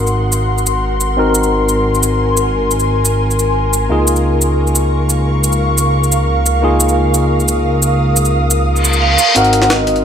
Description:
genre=liquid drum and bass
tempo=176 BPM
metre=4/4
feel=straight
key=Db major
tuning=A4 = 439 Hz
part: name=barky tine electric piano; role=accompaniment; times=0.0-10.0 s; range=Bb3 to Bb4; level=-18 LUFS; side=left 1 dB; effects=overdrive, low-pass filter, dub echo
part: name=ethereal airy pad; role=sustained chords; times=0.0-10.0 s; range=Gb4 to Eb6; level=-18 LUFS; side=left 1 dB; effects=ensemble chorus, built-in reverb
part: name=dark detuned saw bass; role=bass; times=0.0-10.0 s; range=Ab1 to Db2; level=-16 LUFS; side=equal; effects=none
part: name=jungle sampler-style drum kit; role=drums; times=0.1-10.0 s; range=hi-hat, shaker, snare drum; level=-17 LUFS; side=right 1 dB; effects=studio reverb
part: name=reverse cymbal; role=sound effects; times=8.8-9.4 s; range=none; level=-16 LUFS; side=left 3 dB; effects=none
part: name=vibraphone with medium mallets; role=melody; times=9.0-10.0 s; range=Eb5 to Gb5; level=-14 LUFS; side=right 1 dB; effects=low-pass filter
room=light reverb, small room ambience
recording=none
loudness=-11 LUFS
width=side -8 dB against mid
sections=0.0-9.4 A section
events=reverse cymbal 8.8-9.4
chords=0.0 Ab9; 3.9 Db6; 9.2 Gbmaj7#11/Bb; 9.4 Ab9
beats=0.15 0.50 0.84 | 1.18 1.52 1.86 2.20 | 2.54 2.88 3.22 3.56 | 3.90 4.25 4.59 4.93 | 5.27 5.61 5.95 6.29 | 6.63 6.97 7.31 7.66 | 8.00 8.34 8.68 9.02 | 9.36 9.70 10.04

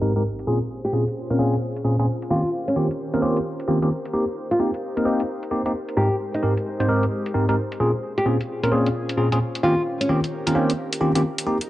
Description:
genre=UK garage, two-step garage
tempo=131 BPM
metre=4/4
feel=swing 64% on 16ths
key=unclear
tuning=A4 = 440 Hz
part: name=airy breathy pad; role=sustained chords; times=0.0-11.7 s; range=Ab2 to C5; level=-30 LUFS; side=equal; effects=chorus
part: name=bell-like tine electric piano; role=stabs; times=0.0-11.6 s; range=Ab2 to C5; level=-21 LUFS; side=equal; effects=phaser, low-pass filter
part: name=impact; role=sound effects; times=0.0-0.5 s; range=none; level=-46 LUFS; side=equal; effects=none
part: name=electronic hi-hat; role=drums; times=0.2-11.7 s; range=none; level=-31 LUFS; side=left 1 dB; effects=low-pass filter on snare, low-pass filter on hats, low-pass filter on perc
part: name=nylon-string guitar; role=melody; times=0.8-10.1 s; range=Db4 to G4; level=-24 LUFS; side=equal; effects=none
room=light reverb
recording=dry, gritty hardware recording, transformer saturation, low-pass filter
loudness=-20 LUFS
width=side -15 dB against mid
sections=0.0-11.7 A section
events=impact 0.0-0.5; filter sweep on drum 0.0-11.7; filter sweep on tine electric piano 0.0-11.7; filter sweep on analog synth pad 0.0-11.7; filter sweep 0.0-11.7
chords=0.5 Bbm9; 2.3 Eb13; 3.9 Cm7; 6.0 Abmaj9; 7.8 Bbm9; 9.6 Eb13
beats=0.01 | 0.47 0.93 1.39 1.85 | 2.31 2.76 3.22 3.68 | 4.14 4.60 5.05 5.51 | 5.97 6.43 6.89 7.34 | 7.80 8.26 8.72 9.18 | 9.63 10.09 10.55 11.01 | 11.47

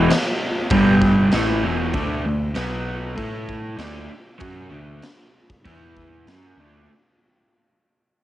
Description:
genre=garage rock duo or trio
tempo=97 BPM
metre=4/4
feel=straight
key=unclear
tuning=A4 = 440 Hz
part: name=raw garage guitar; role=riff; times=0.0-6.9 s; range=E2 to A4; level=-20 LUFS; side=equal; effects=overdrive, spring reverb
part: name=growling picked electric bass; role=bass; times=0.0-6.9 s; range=E1 to A2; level=-28 LUFS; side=equal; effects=overdrive, tube saturation
part: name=raw garage drum kit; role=drums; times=0.1-6.4 s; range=crash cymbal, kick drum, snare drum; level=-25 LUFS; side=equal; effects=cassette tape
room=little or no reverb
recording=home recording on cassette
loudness=-18 LUFS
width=side -14 dB against mid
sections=0.0-6.9 A section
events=fade-out 0.0-6.9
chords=0.0 E5; 0.7 G5; 1.3 E5; 1.9 D5; 2.6 B5; 3.2 A5; 3.8 D5; 5.7 E5; 6.3 D5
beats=0.09 0.71 1.33 | 1.94 2.56 3.18 3.80 | 4.42 5.04 5.66 6.28

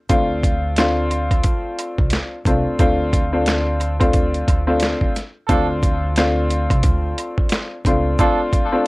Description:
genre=hip hop, boom-bap hip-hop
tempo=89 BPM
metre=4/4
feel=swing 58% on 16ths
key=D minor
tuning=A4 = 439 Hz
part: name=warm upright piano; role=accompaniment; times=0.1-8.9 s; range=A3 to F4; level=-20 LUFS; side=left 1 dB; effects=cassette tape, high-pass filter, low-pass filter
part: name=upright bass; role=bass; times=0.1-8.1 s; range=C2 to D2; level=-22 LUFS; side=equal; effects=none
part: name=dusty soul sampler-style drum kit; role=drums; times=0.1-8.7 s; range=handclaps, hi-hat, kick drum, snare drum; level=-19 LUFS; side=equal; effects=overdrive
part: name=egg shaker and woodblock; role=percussion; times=0.1-8.7 s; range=none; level=-36 LUFS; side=right 5 dB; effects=none
part: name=muted trumpet section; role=stabs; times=5.5-8.4 s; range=D4 to A4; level=-24 LUFS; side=right 4 dB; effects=high-pass filter, low-pass filter, ping-pong delay
room=light reverb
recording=worn, warbling old tape, cassette tape, warbly pitch drift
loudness=-16 LUFS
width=side -22 dB against mid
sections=0.0-5.5 A section; 5.5-8.9 B section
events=none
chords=0.0 Dm7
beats=| 0.10 0.77 1.45 2.12 | 2.80 3.47 4.14 4.82 | 5.49 6.17 6.84 7.51 | 8.19 8.86

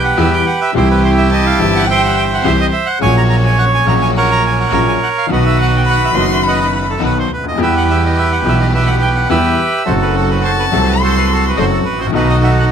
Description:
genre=tango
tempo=106 BPM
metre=4/4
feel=rubato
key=E harmonic minor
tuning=A4 = 440 Hz
part: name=bandoneon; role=melody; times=0.0-12.7 s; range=D#4 to A#5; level=-15 LUFS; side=right 4 dB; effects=none
part: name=bright upright piano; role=accompaniment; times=0.0-12.7 s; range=F#1 to A4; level=-17 LUFS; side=left 5 dB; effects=none
part: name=clear studio string section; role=stabs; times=0.0-12.7 s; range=A#3 to A4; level=-25 LUFS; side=left 1 dB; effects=none
part: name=bright double bass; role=bass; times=0.0-12.7 s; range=F#1 to E2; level=-16 LUFS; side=right 1 dB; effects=none
part: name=warm violin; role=second line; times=1.3-2.3, 5.9-6.9, 10.4-11.4 s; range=G5 to C6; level=-18 LUFS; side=left 3 dB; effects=none
room=little or no reverb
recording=close, detailed microphones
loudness=-11 LUFS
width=side -8 dB against mid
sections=0.0-12.7 A section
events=none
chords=0.0 Em; 0.7 C; 3.0 F#/A#; 5.3 B; 7.6 Em; 9.9 F#dim; 12.1 B7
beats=0.18 | 0.74 1.30 1.87 2.44 | 3.00 3.57 4.14 4.71 | 5.28 5.86 6.43 7.01 | 7.59 8.17 8.74 9.31 | 9.88 10.44 11.01 11.57 | 12.14 12.70

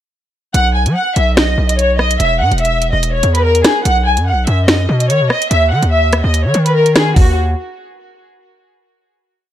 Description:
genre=hip hop, drill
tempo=145 BPM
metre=4/4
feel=half-time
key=unclear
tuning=A4 = 439 Hz
part: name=warm studio violin section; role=melody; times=0.5-7.4 s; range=Gb4 to Ab5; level=-15 LUFS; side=left 1 dB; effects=none
part: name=distorted 808-style bass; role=bass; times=0.5-7.5 s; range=E1 to F#3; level=-14 LUFS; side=equal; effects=distortion
part: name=drill drum kit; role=drums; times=0.5-7.3 s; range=finger snaps, hi-hat, kick drum, rim click, snare drum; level=-14 LUFS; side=equal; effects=none
room=digital ambience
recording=dark, warm production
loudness=-11 LUFS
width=side -11 dB against mid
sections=0.5-7.2 hook; 7.2-8.8 final chord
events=none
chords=0.5 B5; 2.2 N.C.; 3.9 B; 5.5 N.C.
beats=| 0.54 0.96 1.37 1.78 | 2.20 2.61 3.03 3.44 | 3.85 4.27 4.68 5.09 | 5.51 5.92 6.34 6.75 | 7.16

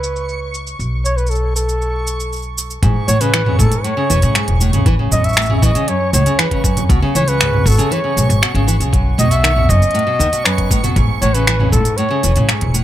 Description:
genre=folktronica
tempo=118 BPM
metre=4/4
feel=straight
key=A lydian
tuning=A4 = 440 Hz
part: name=breathy flugelhorn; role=melody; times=0.0-12.5 s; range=A4 to E5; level=-20 LUFS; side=equal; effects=tape echo
part: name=upright bass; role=bass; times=0.0-12.8 s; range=E1 to A2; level=-16 LUFS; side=equal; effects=none
part: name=organic electronic drum kit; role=drums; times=0.0-12.8 s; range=finger snaps, hi-hat, shaker, toms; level=-18 LUFS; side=right 1 dB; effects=overdrive
part: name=backwards swelling texture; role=texture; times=0.0-12.8 s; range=C#6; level=-28 LUFS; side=right 4 dB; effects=built-in reverb
part: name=nylon-string guitar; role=arpeggios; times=2.8-12.8 s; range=F#2 to E3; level=-19 LUFS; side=equal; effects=tape echo
part: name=electronic kick drum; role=drums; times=2.8-11.8 s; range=none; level=-17 LUFS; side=equal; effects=none
room=digital ambience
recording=low-pass filter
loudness=-13 LUFS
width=side -12 dB against mid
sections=0.0-2.8 A section; 2.8-12.8 B section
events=none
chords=0.0 C#7(no3); 0.8 Aadd9/B; 2.8 Amaj7; 4.9 F#m/A; 6.9 C#7(no3); 8.9 B7; 11.0 Amaj7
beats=0.29 | 0.80 1.30 1.81 2.32 | 2.83 3.34 3.85 4.35 | 4.86 5.37 5.88 6.39 | 6.90 7.41 7.91 8.42 | 8.93 9.44 9.95 10.46 | 10.96 11.47 11.98 12.49

